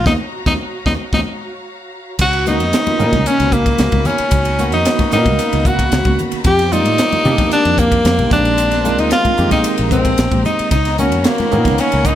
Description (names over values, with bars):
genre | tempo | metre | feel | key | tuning
electric jazz fusion | 113 BPM | 4/4 | straight | unclear | A4 = 441 Hz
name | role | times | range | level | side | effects
clear tenor saxophone | melody | 0.0-12.2 s | Bb3 to G4 | -17 LUFS | equal | slapback echo, plate reverb
rich symphonic string section | sustained chords | 0.0-12.2 s | Gb4 to D6 | -28 LUFS | left 1 dB | none
fingered electric bass | bass | 0.0-12.2 s | Bb1 to D3 | -19 LUFS | equal | none
tine electric piano | accompaniment | 0.1-12.2 s | Cb3 to F5 | -20 LUFS | right 3 dB | fast stereo tremolo
crisp fusion drum kit | drums | 0.1-12.2 s | crash cymbal, hi-hat, kick drum, ride cymbal, snare drum | -19 LUFS | equal | none
congas | percussion | 0.1-11.8 s | none | -25 LUFS | left 4 dB | none
hollow-body jazz guitar | second line | 2.2-12.2 s | Bb3 to G4 | -23 LUFS | left 6 dB | none
room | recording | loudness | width
light reverb | none | -12 LUFS | side -11 dB against mid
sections
0.0-2.2 A section; 2.2-12.2 B section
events
band accent 0.1-2.2; drum fill 1.1-2.2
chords
0.1 Ebm9; 2.2 Db13sus4; 6.5 F13sus4; 8.3 Bb13sus4; 10.7 Db13sus4